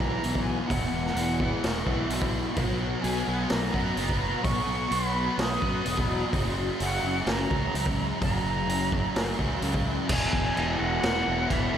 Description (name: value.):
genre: rock, shoegaze and dream pop.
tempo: 128 BPM.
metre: 4/4.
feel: straight.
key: unclear.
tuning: A4 = 440 Hz.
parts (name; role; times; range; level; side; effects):
jazz flute; melody; 0.0-11.8 s; E5 to D#6; -32 LUFS; right 2 dB; analog delay.
fuzz guitar; riff; 0.0-11.8 s; E2 to B3; -28 LUFS; left 1 dB; distortion, ensemble chorus.
growling fingered electric bass; bass; 0.0-11.8 s; E1 to F#2; -31 LUFS; equal; overdrive.
raw garage drum kit; drums; 0.0-11.6 s; crash cymbal, hi-hat, kick drum, snare drum; -30 LUFS; equal; none.
room: moderate plate reverb, RT60 1.8 s, studio ambience.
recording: dreamy mix soaked in reverb.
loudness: -24 LUFS.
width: side -9 dB against mid.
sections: 0.0-10.1 A section; 10.1-11.8 B section.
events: none.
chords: 0.0 Esus2; 2.6 Bmaj7(no3); 6.3 F#; 10.1 Eadd9.